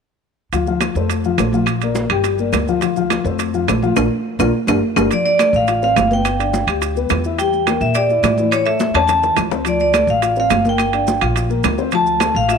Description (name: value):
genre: latin, salsa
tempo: 211 BPM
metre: 4/4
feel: straight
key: D minor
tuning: A4 = 440 Hz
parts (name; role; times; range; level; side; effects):
- dark concert grand piano; accompaniment; 0.5-12.6 s; E3 to G5; -20 LUFS; left 9 dB; none
- upright bass; bass; 0.5-12.6 s; G1 to Bb2; -22 LUFS; right 2 dB; none
- bongos; percussion; 0.5-12.6 s; none; -28 LUFS; left 11 dB; none
- congas; percussion; 0.5-12.6 s; none; -24 LUFS; right 3 dB; none
- maracas; percussion; 0.5-12.6 s; none; -36 LUFS; right 16 dB; none
- timbales; percussion; 0.5-12.6 s; none; -23 LUFS; right 15 dB; none
- claves; percussion; 0.8-12.4 s; none; -27 LUFS; left 11 dB; none
- vibraphone with hard mallets; melody; 5.1-12.6 s; C#5 to A5; -17 LUFS; moving between left 2 dB and right 5 dB; auto-pan, slapback echo
room: moderate plate reverb, RT60 3.0 s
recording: 1960s-style stereo with parts hard left and right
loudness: -14 LUFS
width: side -6 dB against mid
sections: 0.5-5.1 A section; 5.1-12.6 B section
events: band accent 4.0-5.1; drum fill 4.3-5.1, 8.8-9.7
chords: 0.5 Dm; 1.1 F; 1.7 Gm; 2.8 Dm; 3.4 F; 4.0 Bb; 4.5 Gm; 5.1 Dm7; 6.2 G; 7.4 Edim; 8.5 A; 9.7 Dm7; 10.8 Gm7; 11.9 Dm